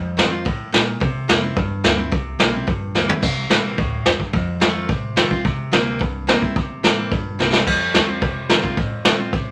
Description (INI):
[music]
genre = rockabilly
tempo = 216 BPM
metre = 4/4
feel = straight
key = C mixolydian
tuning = A4 = 441 Hz
[part]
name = picked steel-string acoustic guitar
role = accompaniment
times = 0.0-9.5 s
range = F2 to F4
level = -26 LUFS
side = equal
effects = none
[part]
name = upright bass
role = bass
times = 0.0-9.5 s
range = F1 to C3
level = -32 LUFS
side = equal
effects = none
[part]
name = vintage brush drum kit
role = drums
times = 0.2-9.4 s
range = crash cymbal, hi-hat, kick drum, snare drum, toms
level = -20 LUFS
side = equal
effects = none
[sound]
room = light reverb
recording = none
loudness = -19 LUFS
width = mono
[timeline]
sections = 0.0-3.2 A section; 3.2-9.5 B section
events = drum fill 3.0, 7.4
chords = 0.0 F7; 1.0 C7; 4.3 F7; 5.5 C7; 7.7 F7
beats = 0.18 0.46 0.74 | 1.01 1.29 1.57 1.85 | 2.12 2.40 2.68 2.96 | 3.23 3.51 3.79 4.07 | 4.34 4.62 4.90 5.18 | 5.45 5.73 6.01 6.29 | 6.56 6.84 7.12 7.39 | 7.67 7.95 8.23 8.50 | 8.78 9.06 9.34